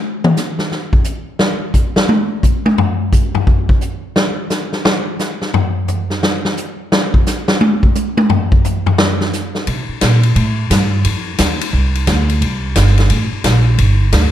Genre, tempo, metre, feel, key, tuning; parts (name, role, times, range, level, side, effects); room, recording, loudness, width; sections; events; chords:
jazz, big band swing; 174 BPM; 4/4; swing 64% on 8ths; A4 = 440 Hz
swinging big-band drum kit; drums; 0.2-14.2 s; hi-hat, kick drum, ride cymbal, snare drum, toms; -14 LUFS; left 1 dB
upright bass; bass; 9.7-14.3 s; G1 to C3; -13 LUFS; right 1 dB
light reverb; dark, warm production; -13 LUFS; side -11 dB against mid
0.0-9.7 A section; 9.7-14.3 B section
drum solo 0.0-9.7